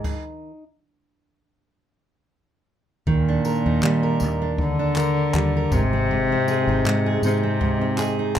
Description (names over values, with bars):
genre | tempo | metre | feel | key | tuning
acoustic pop | 79 BPM | 4/4 | swing 55% on 16ths | Eb major | A4 = 440 Hz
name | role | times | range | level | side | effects
fingerpicked steel-string acoustic guitar | accompaniment | 0.0-8.4 s | Ab2 to Bb4 | -24 LUFS | right 4 dB | none
jazz brush drum kit | drums | 0.0-8.4 s | crash cymbal, handclaps, kick drum, tambourine | -28 LUFS | left 1 dB | none
warm cello | melody | 3.1-8.4 s | Bb2 to D3 | -22 LUFS | left 2 dB | none
fingered electric bass | bass | 3.1-8.4 s | Ab1 to Eb3 | -25 LUFS | equal | none
room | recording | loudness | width
little or no reverb | minimal, uncompressed stereo recording | -19 LUFS | side -10 dB against mid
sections
0.0-3.1 A section; 3.1-8.4 B section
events
stop 0.0-3.1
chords
0.0 N.C.; 3.1 Ebmaj7; 5.7 Ab